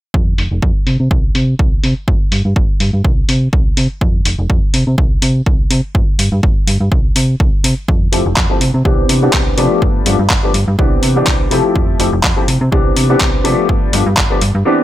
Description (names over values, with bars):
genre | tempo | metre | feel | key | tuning
filtered disco house | 124 BPM | 4/4 | swing 54% on 16ths | C major | A4 = 439 Hz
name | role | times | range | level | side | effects
slap-like FM bass | bass | 0.1-14.6 s | F1 to C3 | -16 LUFS | equal | tube saturation, sidechain pumping, low-pass filter
electronic kick drum | drums | 0.1-14.3 s | none | -15 LUFS | equal | none
dusty soul sampler-style drum kit | drums | 0.4-14.5 s | handclaps, hi-hat | -17 LUFS | left 1 dB | overdrive, sidechain pumping on hats, low-pass filter on hats, low-pass filter on snare, low-pass filter on room
bright grand piano | accompaniment | 8.1-14.8 s | E3 to G4 | -15 LUFS | left 2 dB | phaser, sidechain pumping, low-pass filter
room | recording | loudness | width
little or no reverb | none | -11 LUFS | side -14 dB against mid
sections
0.1-14.8 A section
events
filter sweep 0.1-14.8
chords
0.1 N.C.; 7.9 Fmaj9; 8.6 Cmaj7; 9.8 G7; 10.8 Cmaj7; 11.8 Fmaj9; 12.5 Cmaj7; 13.7 G7